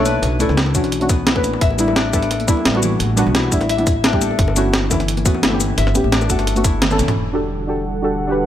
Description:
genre	liquid drum and bass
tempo	173 BPM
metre	4/4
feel	straight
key	E dorian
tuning	A4 = 440 Hz
part	deep mellow chord stab	accompaniment	0.0-8.5 s	G3 to C#5	-20 LUFS	right 1 dB	chorus, tape echo
part	concert harp	arpeggios	0.0-8.5 s	E3 to E5	-24 LUFS	left 6 dB	tape echo
part	upright bass	bass	0.0-8.5 s	E1 to C#2	-21 LUFS	equal	tube saturation
part	breakbeat sampler-style drum kit	drums	0.1-7.1 s	hi-hat, shaker, snare drum, toms	-20 LUFS	equal	small room reverb
part	congas and bongos	percussion	0.1-7.1 s	none	-30 LUFS	left 4 dB	none
part	electronic kick drum	drums	0.7-6.7 s	none	-18 LUFS	equal	overdrive, small room reverb
part	warm analog pad	sustained chords	7.2-8.5 s	D3 to F#5	-24 LUFS	right 1 dB	chorus, sidechain pumping
room	light reverb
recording	none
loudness	-15 LUFS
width	side -11 dB against mid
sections	0.0-7.2 A section; 7.2-8.5 B section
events	kick drops out 6.8-7.2; drum fill 6.8-7.2; band accent 6.8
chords	0.0 Bm7; 1.6 A9sus4; 4.4 Gmaj9#11; 7.2 Em11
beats	| 0.23 0.57 0.92 1.27 | 1.61 1.96 2.31 2.66 | 3.00 3.35 3.70 4.04 | 4.39 4.74 5.08 5.43 | 5.78 6.12 6.47 6.82 | 7.16 7.51 7.86 8.21

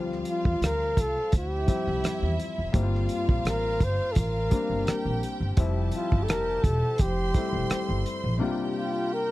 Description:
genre	lush 1970s-style soul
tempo	85 BPM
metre	4/4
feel	swing 54% on 16ths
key	D minor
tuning	A4 = 436 Hz
part	rich studio violin section	second line	0.0-9.3 s	E4 to C6	-36 LUFS	right 1 dB	none
part	warm baby grand piano	accompaniment	0.0-9.3 s	C3 to F4	-32 LUFS	left 4 dB	tube saturation
part	upright bass	bass	0.0-8.4 s	E1 to E2	-29 LUFS	equal	none
part	warm soul drum kit	drums	0.1-8.2 s	hi-hat, kick drum, rim click	-24 LUFS	equal	none
part	breathy flugelhorn	melody	0.3-9.3 s	F4 to C5	-29 LUFS	equal	none
room	little or no reverb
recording	dry, close 1970s-style studio recording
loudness	-24 LUFS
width	side -17 dB against mid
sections	0.0-9.3 A section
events	none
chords	0.0 Dm11; 2.7 Gm11; 5.6 Fmaj9; 8.4 C7sus4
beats	0.61 1.32 2.03 | 2.74 3.45 4.16 4.87 | 5.57 6.28 6.99 7.69 | 8.40 9.11

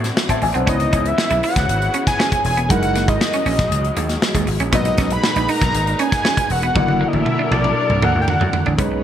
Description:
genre	polished 1980s jazz-funk pop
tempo	118 BPM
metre	4/4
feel	straight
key	unclear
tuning	A4 = 440 Hz
part	warm concert grand piano	accompaniment	0.0-9.0 s	A#2 to A5	-25 LUFS	left 1 dB	wide subtle chorus
part	warm studio string section	sustained chords	0.0-9.0 s	C#3 to B5	-27 LUFS	left 2 dB	none
part	vintage slap bass	bass	0.0-9.0 s	E1 to A2	-22 LUFS	equal	none
part	modern studio drum kit	drums	0.0-8.9 s	hi-hat, kick drum, snare drum, toms	-20 LUFS	equal	gated reverb
part	clean electric guitar	riff	0.3-8.9 s	F#3 to E4	-26 LUFS	right 4 dB	lush chorus
part	fat analog lead	melody	0.7-8.7 s	D5 to B5	-21 LUFS	equal	phaser
room	moderate lush hall reverb, RT60 1.9 s, small room ambience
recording	bright 1980s-style digital production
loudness	-15 LUFS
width	side -10 dB against mid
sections	0.0-8.8 A section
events	drum fill 6.8-8.8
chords	0.0 D9; 0.7 C#m9; 2.7 F#13; 4.7 Bmaj7; 6.8 F#7alt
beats	0.17 | 0.67 1.18 1.69 2.19 | 2.70 3.21 3.71 4.22 | 4.73 5.24 5.74 6.25 | 6.76 7.26 7.77 8.28 | 8.79

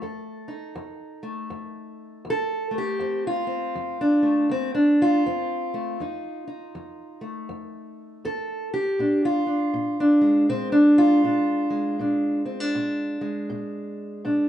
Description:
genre	acoustic country blues, solo or duo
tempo	80 BPM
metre	4/4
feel	swing 62% on 8ths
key	F mixolydian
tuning	A4 = 440 Hz
part	fingerpicked steel-string acoustic guitar	solo	0.0-14.5 s	F2 to A4	-22 LUFS	equal	none
room	moderate stone room reverb, RT60 1.1 s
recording	band playing live in one room, nothing above 10.7 kHz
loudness	-20 LUFS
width	side -11 dB against mid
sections	0.0-14.5 A section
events	none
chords	0.0 F7; 9.0 Bb7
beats	| 0.02 0.77 1.52 2.27 | 3.01 3.76 4.51 5.25 | 6.00 6.75 7.50 8.24 | 8.99 9.74 10.49 11.23 | 11.98 12.73 13.48 14.23

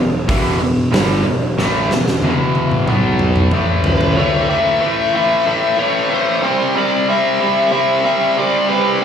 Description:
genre	hard rock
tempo	93 BPM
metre	4/4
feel	straight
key	unclear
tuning	A4 = 445 Hz
part	overdriven electric guitar	riff	0.0-9.0 s	E2 to C4	-16 LUFS	equal	slapback echo
part	fuzz picked electric bass	bass	0.0-4.1 s	E1 to B1	-19 LUFS	right 1 dB	overdrive
part	big rock drum kit	drums	0.3-4.2 s	hi-hat, kick drum, snare drum, toms	-18 LUFS	equal	none
part	bluesy overdriven lead guitar	melody	3.9-9.0 s	B4 to E5	-18 LUFS	left 3 dB	distortion, slapback echo, digital delay
room	light reverb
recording	live gig heard through the venue's PA, club reverb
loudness	-13 LUFS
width	side -8 dB against mid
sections	0.0-4.2 A section; 4.2-9.0 B section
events	drum fill 1.6-4.2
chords	0.0 Em; 2.9 B5; 3.5 A5; 6.4 C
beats	0.28 0.93 | 1.58 2.23 2.88 3.53 | 4.18 4.82 5.47 6.12 | 6.76 7.40 8.05 8.69

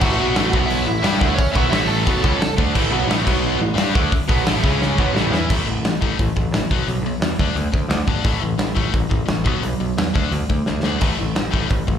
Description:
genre	punk rock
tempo	174 BPM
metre	4/4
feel	straight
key	A mixolydian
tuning	A4 = 440 Hz
part	smooth overdriven lead guitar	melody	0.0-2.5 s	C#4 to A5	-24 LUFS	right 3 dB	slapback echo, digital delay
part	distorted electric guitar	riff	0.0-12.0 s	A2 to G4	-24 LUFS	left 12 dB	overdrive, slapback echo
part	distorted electric guitar	riff	0.0-5.5 s	A2 to G4	-26 LUFS	equal	overdrive, slapback echo
part	overdriven electric guitar	riff	0.0-5.5 s	A2 to G4	-25 LUFS	right 12 dB	slapback echo
part	overdriven picked electric bass	bass	0.0-12.0 s	G#1 to G2	-23 LUFS	equal	none
part	big rock drum kit	drums	0.0-12.0 s	crash cymbal, hi-hat, kick drum, snare drum	-20 LUFS	right 1 dB	none
room	little or no reverb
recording	live gig heard through the venue's PA, club reverb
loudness	-17 LUFS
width	side -8 dB against mid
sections	0.0-5.5 A section; 5.5-12.0 B section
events	drum fill 4.8-5.5, 10.7-11.0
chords	0.0 A5; 0.5 B5; 0.9 A; 3.3 B5; 3.6 A5; 4.6 C#5; 5.0 A5; 6.7 B5; 7.4 D5; 8.2 A5; 9.5 B5; 10.1 D5; 11.0 A5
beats	| 0.01 0.35 0.69 1.03 | 1.37 1.72 2.06 2.40 | 2.74 3.08 3.43 3.77 | 4.11 4.46 4.80 5.14 | 5.49 5.83 6.18 6.52 | 6.87 7.21 7.55 7.90 | 8.25 8.59 8.94 9.28 | 9.63 9.97 10.32 10.66 | 11.01 11.36 11.70

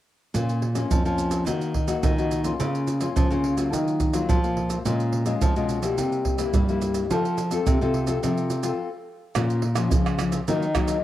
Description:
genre	samba and choro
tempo	106 BPM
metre	4/4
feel	straight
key	Bb minor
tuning	A4 = 440 Hz
part	nylon-string guitar	accompaniment	0.3-11.0 s	F2 to A4	-26 LUFS	left 5 dB	cassette tape
part	nylon-string guitar	bass	0.3-11.0 s	Bb2 to G3	-26 LUFS	right 1 dB	none
part	maracas, surdo, pandeiro and tamborim	percussion	0.3-11.0 s	none	-26 LUFS	right 2 dB	none
room	light reverb, small room reverb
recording	home recording on cassette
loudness	-21 LUFS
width	side -13 dB against mid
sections	0.3-9.4 A section; 9.4-11.0 B section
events	stop 8.8-9.4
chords	0.3 Bbm; 1.5 Ebm; 2.6 Bbm/Db; 3.7 Ebmadd9; 4.9 Bbm7; 6.0 C7; 7.1 F; 9.4 Bbm; 10.5 Ebm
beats	| 0.34 0.91 1.47 2.03 | 2.60 3.16 3.73 4.29 | 4.85 5.41 5.98 6.54 | 7.10 7.67 8.23 8.79 | 9.36 9.92 10.48

